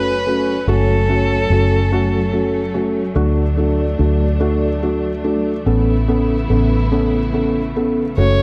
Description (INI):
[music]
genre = six-eight pop ballad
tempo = 48 BPM (dotted quarters)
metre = 6/8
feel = straight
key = unclear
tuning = A4 = 441 Hz
[part]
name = rich violin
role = melody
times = 0.0-2.8, 8.2-8.4 s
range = A4 to C#5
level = -23 LUFS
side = equal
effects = none
[part]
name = felt-muted upright piano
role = accompaniment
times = 0.0-8.4 s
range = A3 to A4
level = -21 LUFS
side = equal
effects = none
[part]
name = warm studio string section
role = sustained chords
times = 0.0-8.4 s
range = C#3 to E4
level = -27 LUFS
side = equal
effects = none
[part]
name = vintage muted fingered electric bass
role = bass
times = 0.0-8.4 s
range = F#1 to D2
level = -21 LUFS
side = equal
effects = none
[sound]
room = moderate echo chamber reverb, RT60 1.5 s, small room ambience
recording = dark, warm production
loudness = -17 LUFS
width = mono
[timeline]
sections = 0.0-8.4 A section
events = none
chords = 0.0 F#m; 3.2 D; 5.7 Aadd9